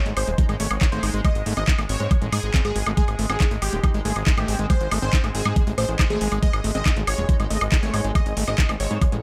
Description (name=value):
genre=psychedelic trance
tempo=139 BPM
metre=4/4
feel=straight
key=Ab major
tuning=A4 = 440 Hz
part: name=supersaw stab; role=melody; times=0.0-9.1 s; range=G4 to Eb5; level=-32 LUFS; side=equal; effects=phaser, sidechain pumping, tape echo
part: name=bubbling stepped-filter texture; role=sustained chords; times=0.0-9.2 s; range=Ab3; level=-37 LUFS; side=equal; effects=chorus, built-in reverb, sidechain pumping
part: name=overdriven acid bass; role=riff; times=0.1-9.2 s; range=Ab3 to Eb4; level=-32 LUFS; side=equal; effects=distortion, sidechain pumping, digital delay
part: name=fat analog bass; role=bass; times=0.1-9.2 s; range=Eb1 to Ab2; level=-28 LUFS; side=equal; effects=none
part: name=garage drum kit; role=drums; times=0.1-9.2 s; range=handclaps, hi-hat, woodblock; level=-30 LUFS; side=equal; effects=overdrive
part: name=metallic wobble bass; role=second line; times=0.4-9.0 s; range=C4 to Eb4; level=-43 LUFS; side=equal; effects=none
part: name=electronic kick drum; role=drums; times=0.4-9.1 s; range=none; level=-22 LUFS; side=equal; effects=overdrive
room=digital ambience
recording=none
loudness=-22 LUFS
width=mono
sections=0.0-9.2 A section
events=none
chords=0.0 Ab5